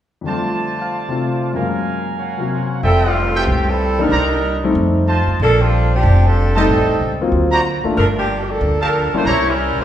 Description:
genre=jazz, big band swing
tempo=187 BPM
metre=4/4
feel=swing 61% on 8ths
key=F major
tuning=A4 = 439 Hz
part: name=clear grand piano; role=accompaniment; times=0.2-9.3 s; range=F2 to F5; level=-20 LUFS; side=left 2 dB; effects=none
part: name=warm trumpet section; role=stabs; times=0.3-9.4 s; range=Eb4 to Db6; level=-22 LUFS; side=right 2 dB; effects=none
part: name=mellow saxophone section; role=melody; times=2.8-9.8 s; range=E3 to Db5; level=-18 LUFS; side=equal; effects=none
part: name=upright bass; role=bass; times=2.8-9.8 s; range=F1 to F2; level=-17 LUFS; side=equal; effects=none
room=wet recital hall reverb, RT60 1.4 s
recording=recorded in a church or concert hall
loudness=-14 LUFS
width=side -10 dB against mid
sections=0.3-2.8 A section; 2.8-9.8 B section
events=none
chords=0.3 F6; 1.5 Gbmaj9; 2.8 Fmaj9; 4.1 Cm9; 4.8 F7; 5.4 Bb69; 6.7 Am7b5; 7.3 D7alt; 8.0 Gm9; 9.3 C7b9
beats=| 0.25 0.58 0.90 1.22 | 1.54 1.86 2.19 2.51 | 2.83 3.15 3.47 3.79 | 4.12 4.44 4.76 5.08 | 5.40 5.72 6.04 6.37 | 6.69 7.01 7.33 7.65 | 7.97 8.29 8.61 8.94 | 9.26 9.58

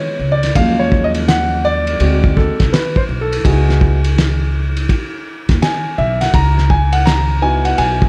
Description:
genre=hip hop, jazz-hop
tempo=83 BPM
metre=4/4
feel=swing 64% on 16ths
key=unclear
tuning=A4 = 440 Hz
part: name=dark baby grand piano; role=accompaniment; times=0.0-8.1 s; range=C#3 to A#5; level=-20 LUFS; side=equal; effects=none
part: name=upright bass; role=bass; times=0.2-8.1 s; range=B1 to D#2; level=-18 LUFS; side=equal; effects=none
part: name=cloth-damped thuddy drum kit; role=drums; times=0.4-8.1 s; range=hi-hat, kick drum, ride cymbal, snare drum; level=-19 LUFS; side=equal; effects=none
room=light reverb, small room ambience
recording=dark, warm production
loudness=-15 LUFS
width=mono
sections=0.0-8.1 A section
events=grand piano solo 0.0-8.1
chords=0.0 Ddim7; 0.6 D#m11; 2.0 D7#11; 3.4 C#m11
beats=| 0.56 1.28 2.00 2.73 | 3.45 4.17 4.89 5.62 | 6.34 7.06 7.79

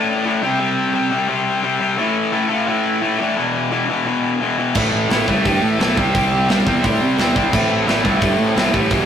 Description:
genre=punk rock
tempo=173 BPM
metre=4/4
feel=straight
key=A minor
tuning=A4 = 440 Hz
part: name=dark smooth lead guitar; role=melody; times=0.0-9.1 s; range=G3 to A5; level=-25 LUFS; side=right 4 dB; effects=overdrive
part: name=cranked stack guitar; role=riff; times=0.0-9.1 s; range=E2 to C4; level=-18 LUFS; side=left 3 dB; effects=overdrive
part: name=tight metal drum kit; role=drums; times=4.7-9.0 s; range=crash cymbal, hi-hat, kick drum, snare drum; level=-21 LUFS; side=right 1 dB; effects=none
part: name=distorted electric guitar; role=riff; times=4.8-9.1 s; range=E2 to C4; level=-23 LUFS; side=right 6 dB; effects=overdrive
part: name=fuzz picked electric bass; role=bass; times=4.8-9.0 s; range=E1 to C3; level=-20 LUFS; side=right 1 dB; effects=overdrive
room=moderate studio reverb, RT60 0.5 s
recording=rough rehearsal-room recording, warm saturation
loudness=-15 LUFS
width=side -8 dB against mid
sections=0.0-9.1 A section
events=none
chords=0.4 C5; 2.0 A5; 3.4 E5; 4.8 A5; 6.0 C; 7.5 Am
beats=0.26 | 0.60 0.95 1.30 1.64 | 1.99 2.34 2.68 3.03 | 3.38 3.72 4.07 4.42 | 4.76 5.11 5.46 5.80 | 6.15 6.50 6.84 7.19 | 7.53 7.88 8.22 8.57 | 8.92

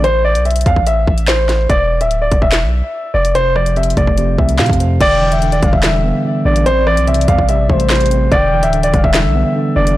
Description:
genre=hip hop, drill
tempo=145 BPM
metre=4/4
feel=half-time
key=E phrygian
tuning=A4 = 440 Hz
part: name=dark baby grand piano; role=melody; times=0.0-9.9 s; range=C5 to F5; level=-16 LUFS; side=equal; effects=ping-pong delay
part: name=mellow tine electric piano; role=accompaniment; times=0.0-0.1, 3.3-10.0 s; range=C3 to C5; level=-18 LUFS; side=right 2 dB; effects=none
part: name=long sustained 808-style bass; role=bass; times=0.0-10.0 s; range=D1 to C3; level=-16 LUFS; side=equal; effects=none
part: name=drill drum kit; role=drums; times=0.0-10.0 s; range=crash cymbal, handclaps, hi-hat, kick drum, rim click, snare drum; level=-17 LUFS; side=equal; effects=none
part: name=gliding portamento lead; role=second line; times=5.0-9.5 s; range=C5 to G5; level=-21 LUFS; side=left 4 dB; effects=chorus, ping-pong delay
room=little or no reverb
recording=blown-out, overdriven recording, overdrive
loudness=-11 LUFS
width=side -15 dB against mid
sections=0.0-5.0 A section; 5.0-10.0 B section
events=break 0.0-3.4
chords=0.0 Am; 1.7 E5; 3.4 F; 5.0 Em7; 6.7 Am7; 8.3 Em7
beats=| 0.04 0.45 0.87 1.28 | 1.70 2.11 2.52 2.94 | 3.35 3.76 4.18 4.59 | 5.00 5.42 5.83 6.25 | 6.66 7.07 7.49 7.90 | 8.32 8.73 9.14 9.56 | 9.97

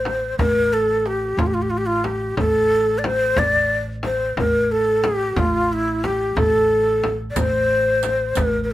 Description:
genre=Persian modal ensemble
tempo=60 BPM (dotted quarters)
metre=6/8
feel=straight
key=A dastgah shur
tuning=A4 = 436 Hz
part: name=breathy ney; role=melody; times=0.0-8.7 s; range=E4 to D5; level=-18 LUFS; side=equal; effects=none
part: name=upright bass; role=bass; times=0.0-8.7 s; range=A1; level=-26 LUFS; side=equal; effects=none
part: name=frame drum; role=percussion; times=0.1-8.5 s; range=none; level=-26 LUFS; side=left 1 dB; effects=none
part: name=tombak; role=percussion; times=0.1-8.5 s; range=none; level=-29 LUFS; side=right 2 dB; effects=none
part: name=riq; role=percussion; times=7.4-8.5 s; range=none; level=-31 LUFS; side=right 8 dB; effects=none
room=moderate small room reverb, RT60 0.5 s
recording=none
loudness=-17 LUFS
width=side -14 dB against mid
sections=0.0-8.7 A section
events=none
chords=none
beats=0.39 | 1.39 2.38 | 3.38 4.38 | 5.37 6.37 | 7.37 8.37

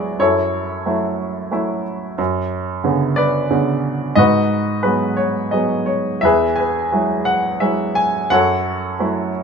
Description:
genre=classical, lyrical solo piano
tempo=89 BPM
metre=3/4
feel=uneven beats, rubato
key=F# minor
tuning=A4 = 439 Hz
part: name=clear baby grand piano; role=solo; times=0.0-9.4 s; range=E2 to G#5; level=-16 LUFS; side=equal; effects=none
room=light reverb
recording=minimal, uncompressed stereo recording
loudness=-16 LUFS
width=side -6 dB against mid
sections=0.0-9.4 A section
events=none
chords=0.2 F#m7; 2.2 Bmadd9/F#; 4.2 G#m7; 6.2 Eadd9; 8.3 F#m7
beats=| 0.20 0.86 1.53 | 2.19 2.85 3.50 | 4.17 4.85 5.54 | 6.24 6.93 7.62 | 8.32 9.00

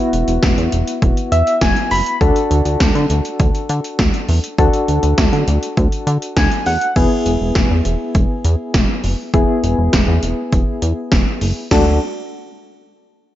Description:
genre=synth-pop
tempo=101 BPM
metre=4/4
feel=straight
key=unclear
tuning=A4 = 440 Hz
part: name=soft electric-piano-like synth keys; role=accompaniment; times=0.0-12.0 s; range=B3 to B5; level=-19 LUFS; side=left 2 dB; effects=chorus, tremolo, low-pass filter
part: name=chorused synth bass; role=bass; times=0.1-12.0 s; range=E1 to D3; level=-17 LUFS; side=equal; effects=none
part: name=80s electronic pad drums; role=drums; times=0.1-11.9 s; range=crash cymbal, hi-hat, kick drum, snare drum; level=-17 LUFS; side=equal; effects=overdrive, gated reverb
room=light reverb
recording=nothing above 7.5 kHz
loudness=-14 LUFS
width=side -13 dB against mid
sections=0.0-7.0 A section; 7.0-11.7 B section; 11.7-13.3 C section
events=synth keys fill 1.0-2.2, 6.1-7.0; filter sweep on synth keys 7.0-11.7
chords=0.0 E; 2.2 D; 7.0 E; 11.7 D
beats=0.43 1.02 1.61 | 2.21 2.80 3.40 3.99 | 4.58 5.18 5.77 6.37 | 6.96 7.55 8.15 8.74 | 9.34 9.93 10.53 11.12 | 11.71

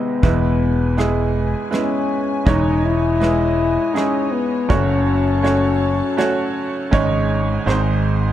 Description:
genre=acoustic folk-pop ballad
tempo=81 BPM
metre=3/4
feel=straight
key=C# minor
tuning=A4 = 440 Hz
part: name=mellow French horn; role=second line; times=0.0-7.7 s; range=B3 to E4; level=-20 LUFS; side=left 4 dB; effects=none
part: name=bright upright piano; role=accompaniment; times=0.0-8.3 s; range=F#1 to D#5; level=-21 LUFS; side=right 5 dB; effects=none
part: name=warm studio string section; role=sustained chords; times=0.2-8.3 s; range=D#4 to A5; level=-30 LUFS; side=left 1 dB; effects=none
part: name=fretless electric bass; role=bass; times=0.2-8.3 s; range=E1 to G#1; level=-20 LUFS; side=equal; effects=none
part: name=soft brush drum kit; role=drums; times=0.2-7.9 s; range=hi-hat, kick drum, rim click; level=-21 LUFS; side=equal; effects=none
room=light reverb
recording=none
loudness=-16 LUFS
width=side -12 dB against mid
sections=0.0-8.3 A section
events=French horn solo 0.0-8.3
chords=0.2 E; 2.5 C#madd9/E; 4.7 F#m; 6.9 G#sus4; 7.7 G#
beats=| 0.23 0.98 1.72 | 2.47 3.21 3.96 | 4.70 5.44 6.19 | 6.93 7.67

